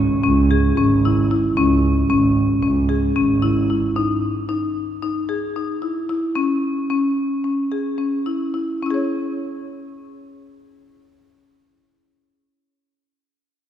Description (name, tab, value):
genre	contemporary instrumental, chamber music in an uneven meter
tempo	223 BPM (eighths)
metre	9/8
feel	uneven beats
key	C# minor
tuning	A4 = 440 Hz
part	marimba with medium hard mallets	arpeggios	0.0-12.1 s	C#4 to C#5	-19 LUFS	left 1 dB	none
part	warm double bass	bass	0.0-3.8 s	G#1 to C#2	-20 LUFS	right 2 dB	none
room	wet church reverb, RT60 3.3 s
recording	recorded in a church or concert hall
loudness	-17 LUFS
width	side -10 dB against mid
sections	0.0-8.8 A section; 8.8-11.3 B section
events	slowing down 4.5-8.8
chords	0.0 C#m; 4.0 Emaj7(no3); 6.4 C#m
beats	0.25 0.52 0.78 1.04 1.31 | 1.57 1.84 2.10 2.37 2.63 2.90 3.16 3.43 3.69 | 3.96 4.22 4.49 4.75 5.02 5.29 5.55 5.82 6.09 | 6.36 6.63 6.90 7.17 7.45 7.72 7.99 8.27 8.55 | 8.82 9.10 9.38 9.66 9.94 10.22 10.50 10.78 11.06